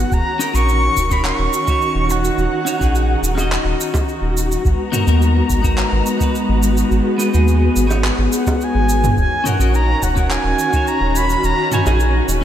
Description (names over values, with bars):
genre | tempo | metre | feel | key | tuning
sunset chillout | 106 BPM | 4/4 | straight | unclear | A4 = 440 Hz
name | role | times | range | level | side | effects
bright reedy silver concert flute | melody | 0.0-3.8, 8.4-12.3 s | F#5 to C#6 | -20 LUFS | right 1 dB | diffuse ambient delay, shimmer reverb
clean electric guitar | accompaniment | 0.0-12.4 s | B3 to D#5 | -22 LUFS | moving between left 6 dB and right 6 dB | auto-pan, diffuse ambient delay, shimmer reverb
dark studio string section | sustained chords | 0.0-12.4 s | D#3 to A#5 | -22 LUFS | left 2 dB | shimmer reverb
round analog bass | bass | 0.0-12.4 s | D#1 to D#2 | -17 LUFS | equal | none
deep house drum kit | drums | 0.1-12.4 s | cabasa, handclaps, toms | -24 LUFS | right 1 dB | none
electronic kick drum | drums | 0.1-10.8 s | none | -19 LUFS | equal | none
bongos | percussion | 3.4-4.1, 7.9-12.0 s | none | -29 LUFS | right 2 dB | none
room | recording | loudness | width
moderate lush hall reverb, RT60 2.2 s | dreamy mix soaked in reverb | -14 LUFS | side -10 dB against mid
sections
0.0-12.4 A section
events
none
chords
0.1 D#m7; 4.6 G#m9; 9.2 D#m7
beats
| 0.12 0.68 1.25 1.82 | 2.38 2.95 3.51 4.08 | 4.65 5.21 5.78 6.34 | 6.91 7.48 8.04 8.61 | 9.17 9.74 10.31 10.87 | 11.44 12.00